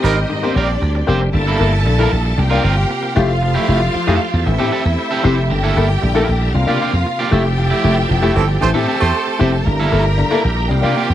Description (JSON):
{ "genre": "disco", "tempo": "115 BPM", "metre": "4/4", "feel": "straight", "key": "G dorian", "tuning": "A4 = 440 Hz", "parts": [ { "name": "rich studio violin section", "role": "second line", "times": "0.0-11.1 s", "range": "D4 to Bb5", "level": "-22 LUFS", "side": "equal", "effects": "none" }, { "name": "electric guitar at the edge of break-up", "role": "accompaniment", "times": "0.0-11.1 s", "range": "A3 to C5", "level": "-22 LUFS", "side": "right 4 dB", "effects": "none" }, { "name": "warm baby grand piano", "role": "accompaniment", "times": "0.0-11.0 s", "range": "G2 to A4", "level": "-20 LUFS", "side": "left 4 dB", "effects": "none" }, { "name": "bright tonewheel organ", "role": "sustained chords", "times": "0.0-11.1 s", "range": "C3 to Bb4", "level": "-24 LUFS", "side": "right 1 dB", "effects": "chorus vibrato, slow rotary speaker" }, { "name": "clear horn section", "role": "stabs", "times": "0.0-0.2, 8.4-9.4 s", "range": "E3 to C5", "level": "-20 LUFS", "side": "right 6 dB", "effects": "none" }, { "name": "slap bass", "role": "bass", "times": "0.0-11.1 s", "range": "F1 to C3", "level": "-16 LUFS", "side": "equal", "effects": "none" } ], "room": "light reverb", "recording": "none", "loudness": "-13 LUFS", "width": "side -12 dB against mid", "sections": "0.0-1.3 A section; 1.3-11.1 B section", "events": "band accent 7.6-9.7", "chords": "0.0 Abmaj9; 1.3 Gm69; 2.4 C7sus4; 3.2 Fmaj9; 4.5 Am7; 5.5 Gm69; 6.5 C7sus4; 7.3 Fmaj9; 9.7 Gm69" }